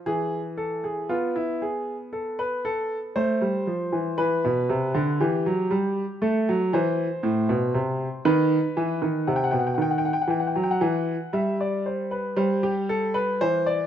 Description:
classical, baroque-style two-part invention for grand piano; 58 BPM; 4/4; straight; A4 = 440 Hz
warm grand piano; solo; 0.1-13.9 s; A2 to G5; -22 LUFS; equal
moderate recital hall reverb, RT60 1.4 s; close, detailed microphones; -22 LUFS; side -9 dB against mid
0.0-12.4 A section; 12.4-13.9 B section
0.1 E; 2.1 Am; 4.2 Em; 6.2 Am; 8.3 B/D#; 10.3 Em; 12.4 C/G

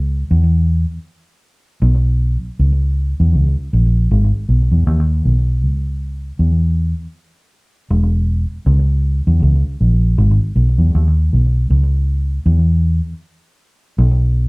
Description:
reggae; 79 BPM; 4/4; swing 59% on 16ths; C# dorian; A4 = 439 Hz
vintage muted fingered electric bass; solo; 0.0-14.5 s; E1 to E2; -13 LUFS; equal; slapback echo
moderate studio reverb, RT60 0.6 s; rough home demo mix; -13 LUFS; side -30 dB against mid
0.0-2.6 A section; 2.6-14.5 B section

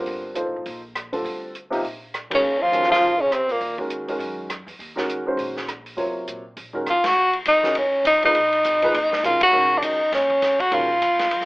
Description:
modal jazz; 203 BPM; 4/4; swing 59% on 8ths; Eb minor from 7.2 s; A4 = 440 Hz
warm upright piano; accompaniment; 0.0-10.9 s; C3 to Db5; -27 LUFS; equal
upright bass; bass; 0.0-11.5 s; Gb1 to Bb2; -44 LUFS; equal
open jazz drum kit; drums; 0.1-11.5 s; hi-hat, kick drum, ride cymbal, rim click, snare drum; -30 LUFS; left 1 dB
breathy tenor saxophone; melody; 2.3-3.8, 6.9-11.5 s; Bb3 to Gb4; -17 LUFS; equal
breathy trombone; second line; 2.3-3.8 s; Bb2 to F3; -26 LUFS; left 1 dB
moderate club reverb, RT60 0.7 s; telephone sound; -18 LUFS; side -24 dB against mid
0.0-7.2 A section; 7.2-11.5 B section
band accent 2.3, 7.0, 9.4
0.0 Gm9; 2.4 Ebm9

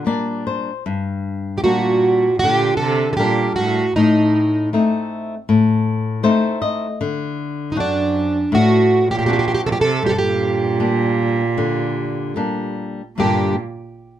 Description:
fado-style ballad; 78 BPM; 4/4; rubato; G harmonic minor; A4 = 440 Hz
fingerpicked plugged-in twelve-string acoustic guitar; melody; 0.0-13.6 s; D4 to A4; -18 LUFS; right 2 dB
warm cello; second line; 0.0-13.5 s; F#2 to C3; -22 LUFS; right 4 dB
flamenco guitar; accompaniment; 0.0-13.6 s; G2 to Eb5; -20 LUFS; left 4 dB
moderate small room reverb, RT60 0.5 s; faint mains hum; -16 LUFS; side -11 dB against mid
0.9-13.2 A section; 13.2-14.2 B section
nylon-string guitar fill 0.0-0.9, 5.9-7.0
0.0 Gm; 4.0 Adim; 7.0 D7; 10.0 Gm

